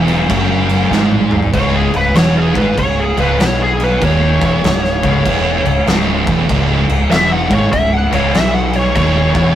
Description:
stoner and doom metal; 97 BPM; 4/4; swing 64% on 8ths; C# minor; A4 = 440 Hz
thick fuzz guitar; riff; 0.0-9.6 s; C#2 to B2; -20 LUFS; left 4 dB; distortion
thick fuzz guitar; riff; 0.0-9.6 s; C#2 to B2; -17 LUFS; right 4 dB; distortion
growling fingered electric bass; bass; 0.0-9.6 s; C#1 to B1; -19 LUFS; equal; overdrive
oversized low-tuned drum kit; drums; 0.1-9.5 s; crash cymbal, kick drum, snare drum, toms; -16 LUFS; equal
fuzz lead guitar; melody; 1.5-9.6 s; G#4 to F#5; -17 LUFS; equal; wah, distortion
light reverb; rough rehearsal-room recording; -11 LUFS; side -11 dB against mid
0.0-1.5 A section; 1.5-9.6 B section
drum fill 0.9-1.5; lead electric guitar solo 1.5-9.6
0.0 C#m (rootless); 1.5 C#m

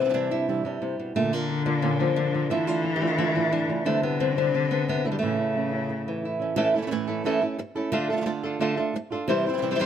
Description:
flamenco; 177 BPM; 4/4; straight; A4 = 440 Hz
flamenco guitar; melody; 0.0-9.9 s; A2 to C5; -25 LUFS; equal
flamenco guitar; stabs; 0.0-9.9 s; A2 to F4; -30 LUFS; right 6 dB
dark cello; second line; 1.2-6.4 s; C#3 to E3; -27 LUFS; left 4 dB
light reverb; close, detailed microphones; -23 LUFS; side -9 dB against mid
0.0-6.6 A section; 6.6-9.9 B section
0.0 Cadd9; 1.2 Bb; 2.5 Dm; 3.9 Cadd9; 5.2 A; 7.9 Dm; 9.3 C

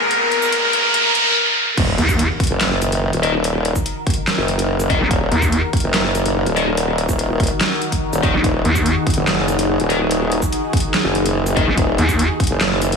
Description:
heavy wobble dubstep; 144 BPM; 4/4; half-time; Eb minor; A4 = 441 Hz
soft supersaw; melody; 0.0-1.3 s; Bb4; -20 LUFS; left 2 dB; tape echo
supersaw pad; sustained chords; 0.0-13.0 s; Ab2 to Bb4; -23 LUFS; left 1 dB; phaser, sidechain pumping, low-pass filter
riser and impact; sound effects; 0.0-3.4 s; -18 LUFS; equal
dubstep drum kit; drums; 0.1-13.0 s; crash cymbal, handclaps, hi-hat, shaker, snare drum; -22 LUFS; equal; overdrive
formant-sweep wobble bass; bass; 1.8-13.0 s; Eb1 to Gb1; -19 LUFS; equal; chorus, overdrive
electronic kick drum; drums; 1.8-12.5 s; -20 LUFS; equal
vowel-sweep wobble bass; bass; 2.0-2.3, 5.0-5.6, 8.3-8.9, 11.7-12.3 s; Bb1 to Eb2; -16 LUFS; equal; chorus, overdrive
thick fuzz guitar; stabs; 3.2-11.6 s; Eb4 to Eb5; -24 LUFS; left 3 dB; distortion, tape echo
light reverb; high-pass filter, studio ambience; -15 LUFS; side -5 dB against mid
0.0-1.8 A section; 1.8-13.0 B section
build-up 0.0-1.8; riser 0.0-1.4; filter sweep 0.0-1.8; stop 1.4-1.8; drop 1.8-13.0; impact 1.8-3.4
0.0 Abm; 1.8 Ebm

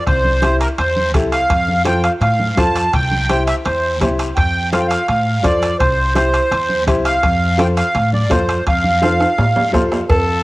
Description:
latin, cumbia; 168 BPM; 4/4; straight; F major; A4 = 441 Hz
accordion; melody; 0.0-9.7 s; Bb4 to A5; -17 LUFS; right 1 dB; light tremolo tuning
upright bass; bass; 0.1-10.4 s; C2 to A2; -19 LUFS; equal
bombo; percussion; 0.1-10.3 s; -21 LUFS; equal
congas; percussion; 0.1-10.3 s; -26 LUFS; right 1 dB
guiro; percussion; 0.1-10.4 s; -32 LUFS; left 4 dB
timbales and cowbell; percussion; 0.1-10.3 s; -25 LUFS; right 2 dB
bright upright piano; accompaniment; 0.4-10.0 s; E4 to C5; -22 LUFS; left 2 dB; cassette tape
accordion; second line; 10.1-10.4 s; A4; -17 LUFS; equal; cassette tape
light reverb, small room ambience; home recording on cassette; -13 LUFS; side -20 dB against mid
0.0-10.1 A section
drum fill 9.0-10.1
0.1 C; 1.5 F; 2.9 C; 4.4 F; 5.8 C; 7.2 F

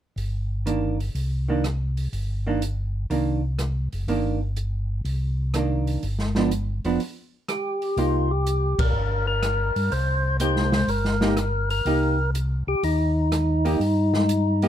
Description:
soul jazz organ trio; 123 BPM; 4/4; swing 68% on 8ths; C minor; A4 = 443 Hz
mellow tonewheel organ; bass; 0.2-14.7 s; F1 to G2; -24 LUFS; equal; chorus vibrato, stopped rotary speaker
open jazz drum kit; drums; 0.2-14.7 s; hi-hat, kick drum, ride cymbal, rim click, snare drum; -29 LUFS; equal
vintage hollow-body jazz guitar; accompaniment; 0.7-14.7 s; Eb3 to G4; -25 LUFS; right 3 dB
percussive tonewheel organ; melody; 7.5-14.7 s; Eb4 to C5; -24 LUFS; left 1 dB; slow rotary speaker, overdrive, plate reverb
light reverb; close, detailed microphones; -22 LUFS; side -10 dB against mid
0.2-8.0 A section; 8.0-14.7 B section
break 7.0-8.0; band accent 8.7
0.2 Cm9/G; 6.0 G7; 8.0 Cm7

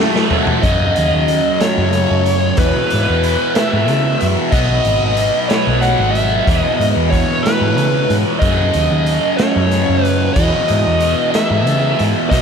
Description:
psychedelic rock; 62 BPM (dotted quarters); 6/8; straight; A4 = 440 Hz
fuzz guitar; riff; 0.0-12.4 s; E2 to C#4; -17 LUFS; right 1 dB; distortion, phaser
raw garage drum kit; drums; 0.2-12.4 s; hi-hat, kick drum, snare drum, toms; -20 LUFS; equal
dark smooth lead guitar; melody; 0.6-12.4 s; B4 to F#5; -17 LUFS; left 1 dB; wah, overdrive, ping-pong delay
hollow-body short-scale picked electric bass; bass; 0.6-12.4 s; G#1 to C#3; -18 LUFS; equal
moderate huge ambient reverb, RT60 4.8 s; dreamy mix soaked in reverb; -12 LUFS; side -6 dB against mid
0.6-12.4 A section
drum fill 0.0-0.6
0.0 F#m; 0.6 F#5; 2.6 E; 4.5 B; 6.5 E; 8.4 F#5; 10.4 E

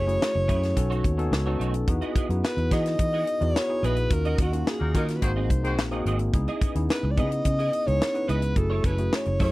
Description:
polished 1980s jazz-funk pop; 108 BPM; 4/4; straight; A4 = 436 Hz
breathy alto saxophone; melody; 0.0-9.5 s; F#4 to D#5; -28 LUFS; equal; slapback echo
tine electric piano; accompaniment; 0.0-9.5 s; A3 to B4; -30 LUFS; left 1 dB; analog chorus
clean electric guitar; riff; 0.0-9.5 s; A3 to D#5; -35 LUFS; right 4 dB; ensemble chorus
vintage muted fingered electric bass; bass; 0.0-9.5 s; F#1 to E3; -26 LUFS; equal
tight funk drum kit; drums; 0.1-9.5 s; hi-hat, kick drum, snare drum; -26 LUFS; equal
clear horn section; second line; 4.8-5.8 s; F#3 to B#4; -32 LUFS; left 2 dB
little or no reverb; dry, close 1970s-style studio recording; -22 LUFS; side -19 dB against mid
0.0-9.5 A section
band accent 4.1-6.3
0.0 F#m9; 0.8 B9; 1.9 Emaj7; 4.1 D#m7; 5.2 G#7; 6.3 C#m9; 8.6 F#m7

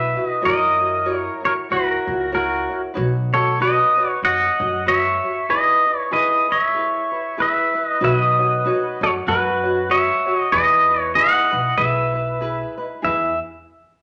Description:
Hawaiian; 95 BPM; 4/4; swing 59% on 8ths; E major; A4 = 440 Hz
pedal steel guitar; melody; 0.0-13.4 s; F#4 to F#5; -20 LUFS; equal
ukulele; accompaniment; 0.0-13.3 s; D#4 to E5; -28 LUFS; equal
upright bass; bass; 0.0-13.4 s; B1 to F#2; -30 LUFS; equal
wet large studio reverb, RT60 1.0 s; nothing above 10.7 kHz; -19 LUFS; mono
0.0-8.0 A section; 8.0-13.0 B section
0.4 F#7; 3.0 Badd9; 5.5 Emaj7; 8.0 Badd9; 10.5 Emaj7

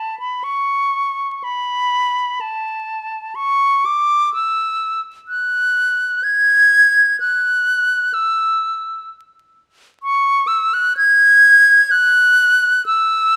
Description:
classical, baroque-style fantasia for unaccompanied flute; 62 BPM; 3/4; rubato; F# minor; A4 = 439 Hz
bright concert flute; solo; 0.0-13.4 s; A5 to G#6; -15 LUFS; equal
moderate recital hall reverb, RT60 1.6 s; vinyl crackle; -15 LUFS; mono
0.0-13.4 A section

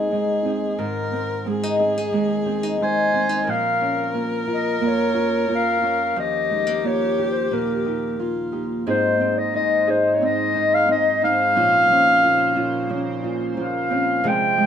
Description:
acoustic folk-pop ballad; 89 BPM; 4/4; straight; Ab major; A4 = 440 Hz
warm viola; second line; 0.0-8.9 s; F4 to C5; -26 LUFS; left 4 dB
nylon-string guitar; accompaniment; 0.0-14.7 s; Eb2 to Ab4; -24 LUFS; left 1 dB
Celtic harp; arpeggios; 0.0-14.7 s; Eb3 to Ab4; -27 LUFS; right 4 dB
dark clarinet; melody; 2.8-14.7 s; Bb4 to Ab5; -20 LUFS; equal
chorused pulse-width pad; sustained chords; 8.9-14.7 s; Ab2 to C5; -30 LUFS; right 1 dB
light reverb; minimal, uncompressed stereo recording; -18 LUFS; side -8 dB against mid
0.0-8.9 A section; 8.9-14.7 B section
0.0 Ab; 3.5 Bbm; 6.2 Ebadd9; 8.9 Ab; 11.6 Bbmadd9

